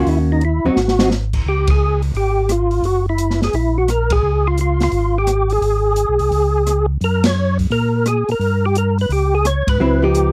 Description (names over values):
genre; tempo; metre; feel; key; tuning
soul jazz organ trio; 173 BPM; 4/4; swing 65% on 8ths; Db mixolydian; A4 = 440 Hz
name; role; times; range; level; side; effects
percussive tonewheel organ; melody; 0.0-10.3 s; Eb4 to Db5; -20 LUFS; equal; slow rotary speaker, chorus vibrato
hollow-body jazz guitar; accompaniment; 0.0-1.1, 9.8-10.3 s; Eb3 to Gb4; -20 LUFS; equal; none
mellow tonewheel organ; bass; 0.0-10.3 s; Gb1 to Bb2; -20 LUFS; equal; slow rotary speaker
open jazz drum kit; drums; 0.1-10.2 s; crash cymbal, hi-hat, kick drum, ride cymbal, rim click, snare drum; -24 LUFS; equal; none
room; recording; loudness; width
little or no reverb; dry, close 1970s-style studio recording; -17 LUFS; mono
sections
0.0-1.5 A section; 1.5-10.3 A section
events
drum fill 0.8-1.1; band accent 1.6, 4.1, 7.2, 9.6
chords
0.1 Ebm7; 0.8 Ab7; 1.5 Db; 2.8 Gb7; 4.2 Db; 5.6 Abm; 6.3 Db5; 7.0 Gb; 8.4 Gdim; 9.8 Db9